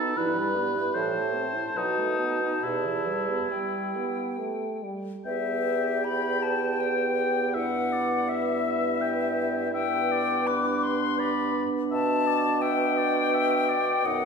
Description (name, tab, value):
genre	classical, slow romantic movement for wind quintet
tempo	67-87 BPM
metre	3/4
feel	rubato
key	E minor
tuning	A4 = 440 Hz
part	silver concert flute	melody	0.0-14.2 s	E5 to D6	-29 LUFS	left 7 dB	none
part	warm oboe	second line	0.0-14.2 s	D#4 to G5	-30 LUFS	left 1 dB	none
part	clear French horn	accompaniment	0.0-14.2 s	B2 to E4	-33 LUFS	equal	none
part	dark clarinet	accompaniment	0.0-14.2 s	D4 to G4	-32 LUFS	right 9 dB	none
part	warm bassoon	bass	0.2-14.2 s	E2 to B2	-30 LUFS	right 2 dB	none
room	wet recital hall reverb, RT60 1.7 s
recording	recorded in a church or concert hall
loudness	-24 LUFS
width	side -5 dB against mid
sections	0.0-5.3 A section; 5.3-14.2 B section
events	none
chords	0.2 Em/G; 0.9 Am; 1.8 B7; 2.6 Em; 7.6 Em/G; 9.7 G; 11.9 G/B